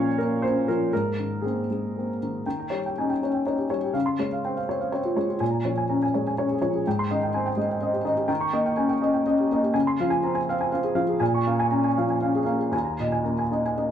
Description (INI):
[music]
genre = neoclassical minimalist piano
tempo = 112-126 BPM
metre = 3/4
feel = rubato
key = unclear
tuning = A4 = 439 Hz
[part]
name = warm upright piano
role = solo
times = 0.0-13.9 s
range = Eb2 to Db6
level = -22 LUFS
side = equal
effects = none
[sound]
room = wet studio reverb, RT60 0.5 s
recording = heard from further back in the room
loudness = -22 LUFS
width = side -9 dB against mid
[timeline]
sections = 0.0-2.4 A section; 2.4-13.9 B section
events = none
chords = 0.0 Bbm; 0.9 Abadd9; 2.4 Eb7; 3.9 Dbmaj7; 5.4 Bbm7; 6.9 Abmaj7; 8.3 Eb7; 9.7 Dbmaj7; 11.2 Bbm7; 12.7 Ebsus4